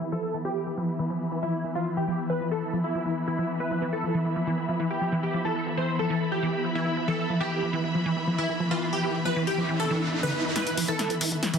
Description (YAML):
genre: psychedelic trance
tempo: 138 BPM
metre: 4/4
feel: straight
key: E phrygian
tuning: A4 = 440 Hz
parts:
  - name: swarming drone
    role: sustained chords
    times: 0.0-11.6 s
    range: E3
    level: -33 LUFS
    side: left 2 dB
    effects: built-in reverb
  - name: wide unison pluck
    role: riff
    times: 0.0-11.6 s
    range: D3 to E4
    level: -29 LUFS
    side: equal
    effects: auto-pan
  - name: warm studio string section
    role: texture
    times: 0.0-11.6 s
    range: B3 to B5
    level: -34 LUFS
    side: equal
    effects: none
  - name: supersaw stab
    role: melody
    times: 0.1-11.1 s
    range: E4 to C5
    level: -30 LUFS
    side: right 1 dB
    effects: phaser, dub echo
  - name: riser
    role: sound effects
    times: 8.6-11.6 s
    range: none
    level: -34 LUFS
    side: right 1 dB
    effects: none
  - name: techno drum kit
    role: drums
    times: 10.6-11.6 s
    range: hi-hat, snare drum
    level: -28 LUFS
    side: equal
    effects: overdrive, studio reverb
room: light reverb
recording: dense, heavily limited modern master, low-pass filter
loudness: -25 LUFS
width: side -7 dB against mid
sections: 0.0-10.6 A section; 10.6-11.6 B section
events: filter sweep 0.0-10.6; riser 8.6-10.6, 10.6-11.6; build-up 10.6-11.6; drum fill 10.6-11.6; filter sweep on synth arpeggio sound 10.6-11.6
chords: 0.0 E5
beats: | 0.12 0.56 0.99 1.43 | 1.86 2.30 2.73 3.17 | 3.60 4.04 4.47 4.91 | 5.34 5.78 6.21 6.64 | 7.08 7.51 7.95 8.38 | 8.82 9.25 9.69 10.12 | 10.56 10.99 11.43